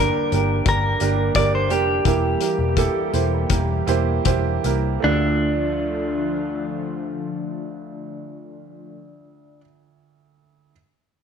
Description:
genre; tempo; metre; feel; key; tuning
piano-driven pop; 76-88 BPM; 4/4; straight; D minor; A4 = 440 Hz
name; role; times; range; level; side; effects
direct-recorded clean electric guitar; melody; 0.0-9.6 s; D4 to D5; -24 LUFS; left 1 dB; lush chorus
warm upright piano; accompaniment; 0.0-10.7 s; D2 to C5; -24 LUFS; right 10 dB; none
lush unison pad; sustained chords; 0.0-9.0 s; D3 to G4; -30 LUFS; left 1 dB; chorus, phaser
vintage muted picked electric bass; bass; 0.0-9.6 s; E1 to D2; -23 LUFS; left 2 dB; none
loose indie drum kit; drums; 0.3-4.8 s; hi-hat, kick drum; -24 LUFS; left 5 dB; none
room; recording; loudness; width
moderate echo chamber reverb, RT60 1.4 s, small room ambience; 1960s-style stereo; -18 LUFS; side -7 dB against mid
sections
0.0-5.0 A section; 5.0-8.2 B section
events
slowing down 0.0-5.0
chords
0.0 Gm; 2.0 Edim; 5.0 Dm

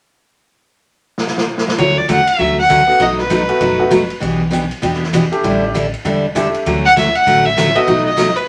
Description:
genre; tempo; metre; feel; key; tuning
country, western swing; 197 BPM; 4/4; swing 60% on 8ths; D major; A4 = 442 Hz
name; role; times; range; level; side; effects
swinging big-band drum kit; drums; 1.2-8.4 s; hi-hat, kick drum, ride cymbal, snare drum; -26 LUFS; equal; none
rich fiddle; melody; 1.8-4.1, 6.9-8.5 s; B4 to F#5; -15 LUFS; equal; none
picked steel-string acoustic guitar; accompaniment; 1.8-8.3 s; B2 to A4; -18 LUFS; equal; none
upright bass; bass; 1.8-8.4 s; E1 to E2; -30 LUFS; equal; none
clear upright piano; accompaniment; 2.9-7.9 s; A3 to G4; -21 LUFS; equal; none
room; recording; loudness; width
moderate studio ambience, RT60 0.5 s; none; -14 LUFS; mono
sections
0.6-1.8 A section; 1.8-6.7 B section; 6.7-8.5 C section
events
drum fill 1.2-1.8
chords
0.6 N.C.; 1.8 Dmaj7; 3.0 B7; 4.2 Em7/B; 5.4 A7sus4; 6.7 Dmaj7; 7.9 B7

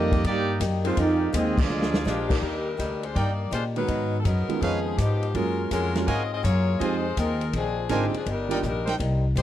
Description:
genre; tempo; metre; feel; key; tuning
jazz, big band swing; 164 BPM; 4/4; swing 66% on 8ths; Eb major; A4 = 440 Hz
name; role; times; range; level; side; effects
brilliant trumpet section; melody; 0.0-2.3 s; Ab3 to Eb5; -31 LUFS; equal; none
muted trombone section; second line; 0.0-2.3 s; F3 to Eb4; -26 LUFS; right 4 dB; none
picked swing-style acoustic guitar; accompaniment; 0.0-9.4 s; F2 to Bb4; -34 LUFS; left 3 dB; none
upright bass; bass; 0.0-9.4 s; G1 to Bb2; -26 LUFS; equal; none
vintage drum kit; drums; 0.1-9.4 s; crash cymbal, hi-hat, kick drum, ride cymbal, snare drum; -30 LUFS; equal; none
clear saxophone section; sustained chords; 0.8-2.8 s; Eb3 to D5; -30 LUFS; left 3 dB; none
edgy saxophone section; melody; 2.1-9.4 s; Eb3 to Eb5; -30 LUFS; left 5 dB; none
bright trumpet section; stabs; 3.1-8.9 s; D4 to Ab5; -30 LUFS; right 2 dB; none
warm upright piano; accompaniment; 3.8-8.6 s; D3 to G4; -29 LUFS; right 7 dB; none
room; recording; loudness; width
small room reverb; dry, close 1970s-style studio recording; -22 LUFS; side -12 dB against mid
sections
0.0-2.4 A section; 2.4-9.4 B section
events
band accent 1.5; drum fill 1.7-2.1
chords
0.0 Ebmaj7; 1.0 Fm7; 1.7 Bb7; 2.4 Ebmaj7; 3.9 Abm9; 4.6 Db9; 5.3 Gbmaj9; 6.8 Fm7; 7.5 Bb9; 8.3 Ebmaj7

